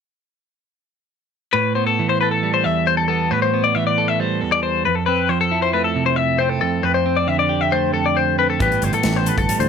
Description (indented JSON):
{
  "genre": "math rock and midwest emo",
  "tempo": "136 BPM",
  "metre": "4/4",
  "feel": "straight",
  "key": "A minor",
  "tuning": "A4 = 442 Hz",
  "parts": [
    { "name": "clean electric guitar", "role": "accompaniment", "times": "1.5-9.7 s", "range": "E2 to A4", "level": "-20 LUFS", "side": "right 7 dB", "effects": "spring reverb" },
    { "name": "twelve-string electric guitar", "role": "arpeggios", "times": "1.5-9.7 s", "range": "A4 to E5", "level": "-18 LUFS", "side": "left 8 dB", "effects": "none" },
    { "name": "overdriven fingered electric bass", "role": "bass", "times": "8.6-9.7 s", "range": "G1 to D2", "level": "-22 LUFS", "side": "equal", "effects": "none" },
    { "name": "modern studio drum kit", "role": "drums", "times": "8.6-9.7 s", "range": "hi-hat, kick drum, snare drum", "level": "-23 LUFS", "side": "left 1 dB", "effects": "none" }
  ],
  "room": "light reverb",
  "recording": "none",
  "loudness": "-16 LUFS",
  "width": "side -6 dB against mid",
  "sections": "1.5-9.7 A section",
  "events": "none",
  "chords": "1.5 Am9; 4.9 Fmaj7; 6.8 Dm9/F; 8.6 Am9"
}